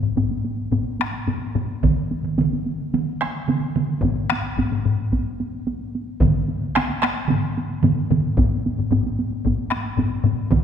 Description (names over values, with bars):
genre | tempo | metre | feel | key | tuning
japanese traditional, taiko drum ensemble | 110 BPM | 4/4 | straight | none | none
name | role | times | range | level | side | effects
solo taiko drums | percussion | 0.0-10.6 s | none | -26 LUFS | right 2 dB | none
taiko ensemble | percussion | 0.0-10.4 s | none | -23 LUFS | left 4 dB | none
taiko ensemble | percussion | 0.2-10.6 s | none | -26 LUFS | equal | none
taiko ensemble | percussion | 1.8-10.6 s | none | -23 LUFS | right 4 dB | none
room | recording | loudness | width
wet concert hall reverb, RT60 2.2 s | minimal, uncompressed stereo recording | -20 LUFS | side -8 dB against mid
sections
0.0-10.6 A section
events
speeding up 0.0-10.6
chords
none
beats
0.16 0.72 1.27 | 1.83 2.38 2.93 3.48 | 4.03 4.58 5.13 5.67 | 6.21 6.75 7.29 7.83 | 8.37 8.91 9.44 9.98 | 10.51